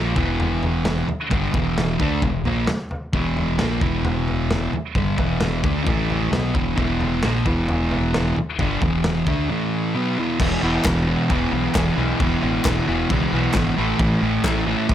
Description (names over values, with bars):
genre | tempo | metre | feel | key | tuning
garage rock duo or trio | 132 BPM | 4/4 | straight | unclear | A4 = 440 Hz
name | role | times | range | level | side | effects
fuzz guitar | riff | 0.0-14.9 s | E2 to D4 | -21 LUFS | equal | distortion
fingered electric bass | bass | 0.0-14.9 s | E1 to D2 | -26 LUFS | equal | none
crunchy breakbeat drum kit | drums | 0.2-14.9 s | crash cymbal, kick drum, snare drum, toms | -24 LUFS | equal | none
group handclap | percussion | 10.8-14.6 s | none | -31 LUFS | left 5 dB | none
room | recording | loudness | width
light reverb | none | -18 LUFS | side -11 dB against mid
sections
0.0-10.4 A section; 10.4-14.9 B section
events
none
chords
0.0 E5; 5.9 A5; 6.3 E5; 9.5 A5; 9.9 E5; 13.8 A5